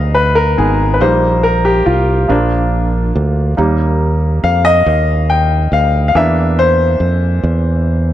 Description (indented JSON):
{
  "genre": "slow gospel",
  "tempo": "47 BPM (dotted quarters)",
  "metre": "6/8",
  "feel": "straight",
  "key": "Eb major",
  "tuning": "A4 = 440 Hz",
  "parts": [
    { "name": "clear grand piano", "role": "accompaniment", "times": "0.0-8.1 s", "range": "E3 to G5", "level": "-14 LUFS", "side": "left 1 dB", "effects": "none" },
    { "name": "fingered electric bass", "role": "bass", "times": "0.0-8.1 s", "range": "Ab1 to F2", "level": "-14 LUFS", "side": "right 1 dB", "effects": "none" }
  ],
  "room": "light reverb, small room ambience",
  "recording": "none",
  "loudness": "-11 LUFS",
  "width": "side -12 dB against mid",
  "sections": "0.0-8.1 A section",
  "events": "grand piano solo 0.0-8.1",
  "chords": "0.0 Abm; 1.0 Eb/Bb; 2.3 Bb; 3.6 Eb; 6.1 C7/E",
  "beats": "| 1.01 2.30 | 3.58 4.86 | 6.15 7.43"
}